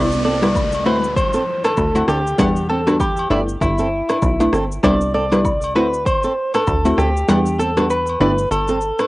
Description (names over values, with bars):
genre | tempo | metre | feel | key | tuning
afrobeats | 98 BPM | 4/4 | swing 58% on 16ths | unclear | A4 = 444 Hz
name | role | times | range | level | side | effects
direct-recorded clean electric guitar | melody | 0.0-9.1 s | E4 to D5 | -20 LUFS | equal | cassette tape, tape echo
analog pluck | accompaniment | 0.0-8.4 s | G3 to F#5 | -19 LUFS | left 1 dB | chorus, cassette tape
flamenco guitar | riff | 0.0-9.1 s | C4 to D5 | -24 LUFS | right 2 dB | cassette tape
plucky analog bass | bass | 0.0-8.9 s | G1 to E2 | -22 LUFS | equal | none
downlifter | sound effects | 0.0-4.8 s | none | -28 LUFS | equal | none
afro-pop drum kit | drums | 0.1-9.1 s | kick drum, rim click, shaker | -23 LUFS | equal | overdrive, cassette tape
agogo bells and woodblock | percussion | 0.4-9.1 s | none | -27 LUFS | left 2 dB | none
room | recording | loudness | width
light reverb | home recording on cassette, nothing above 10.9 kHz | -15 LUFS | side -19 dB against mid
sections
0.0-9.1 A section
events
kick muted 7.3-9.1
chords
0.0 Cmaj9; 0.9 D9; 2.4 Em7; 3.3 G69; 4.8 Cmaj9; 5.8 D9; 7.3 Em7; 8.2 G69